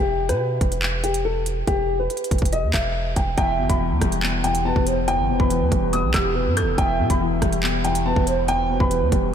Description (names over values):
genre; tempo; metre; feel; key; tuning
hip hop, drill; 141 BPM; 4/4; half-time; E minor; A4 = 445 Hz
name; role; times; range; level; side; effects
dark upright piano; melody; 0.0-9.3 s; G4 to G6; -24 LUFS; left 1 dB; analog delay
long sustained 808-style bass; bass; 0.0-9.3 s; D#1 to B2; -25 LUFS; equal; none
drill drum kit; drums; 0.3-9.2 s; handclaps, hi-hat, kick drum, rim click; -24 LUFS; equal; none
hollow clarinet-like synth lead; second line; 3.4-9.3 s; G4 to E5; -26 LUFS; right 6 dB; chorus, analog delay
felt-muted upright piano; accompaniment; 3.4-9.3 s; E2 to B3; -24 LUFS; left 5 dB; wide subtle chorus
room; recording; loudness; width
light reverb, digital ambience; none; -19 LUFS; side -8 dB against mid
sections
0.0-3.4 A section; 3.4-9.3 B section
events
none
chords
0.0 E5; 3.4 Em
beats
0.40 0.82 1.25 | 1.68 2.10 2.53 2.95 | 3.38 3.80 4.23 4.65 | 5.08 5.50 5.93 6.36 | 6.78 7.21 7.63 8.06 | 8.48 8.91 9.33